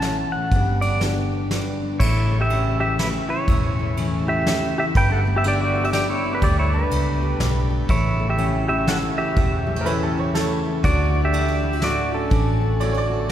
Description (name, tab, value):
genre	honky-tonk and classic country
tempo	122 BPM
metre	3/4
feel	swing 61% on 8ths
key	A mixolydian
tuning	A4 = 439 Hz
part	pedal steel guitar	melody	0.0-13.3 s	C#4 to A5	-24 LUFS	right 1 dB	none
part	picked steel-string acoustic guitar	accompaniment	0.0-13.3 s	E2 to G4	-26 LUFS	left 3 dB	none
part	warm grand piano	accompaniment	0.0-1.9, 8.4-13.3 s	E4 to F#5	-34 LUFS	right 4 dB	none
part	vintage muted fingered electric bass	bass	0.0-13.3 s	E1 to D2	-23 LUFS	equal	none
part	soft brush drum kit	drums	0.0-13.3 s	crash cymbal, kick drum, ride cymbal, snare drum	-25 LUFS	equal	none
part	pipe organ, full organ	sustained chords	2.0-13.3 s	C#3 to F#5	-33 LUFS	right 1 dB	none
part	bright upright piano	second line	9.8-13.3 s	A4 to D5	-28 LUFS	right 3 dB	none
room	wet church reverb, RT60 3.9 s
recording	recorded in a church or concert hall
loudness	-18 LUFS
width	side -11 dB against mid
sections	0.0-2.0 A section; 2.0-13.3 B section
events	pedal steel guitar solo 0.0-2.0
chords	0.0 A; 0.5 G; 2.0 A; 4.9 Gadd9; 7.9 A; 10.8 D